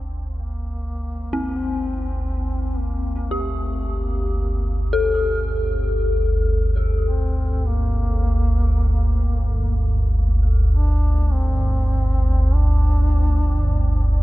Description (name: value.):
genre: dark ambient drone.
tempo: 49 BPM.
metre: 4/4.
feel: straight.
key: G minor.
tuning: A4 = 441 Hz.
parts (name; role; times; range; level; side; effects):
dark duduk; melody; 0.0-14.2 s; A3 to D4; -32 LUFS; left 1 dB; diffuse ambient delay.
deep rumbling drone; drone; 0.0-14.2 s; G1 to D2; -19 LUFS; equal; built-in reverb, phaser, wide subtle chorus.
dark detuned synth bell; arpeggios; 1.3-14.2 s; C4 to A4; -26 LUFS; left 3 dB; chorus, phaser, diffuse ambient delay.
room: light reverb, studio ambience.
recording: cassette tape.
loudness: -18 LUFS.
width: side -17 dB against mid.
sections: 0.0-14.2 A section.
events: fade-in on duduk 0.0-14.2.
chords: 0.0 G5.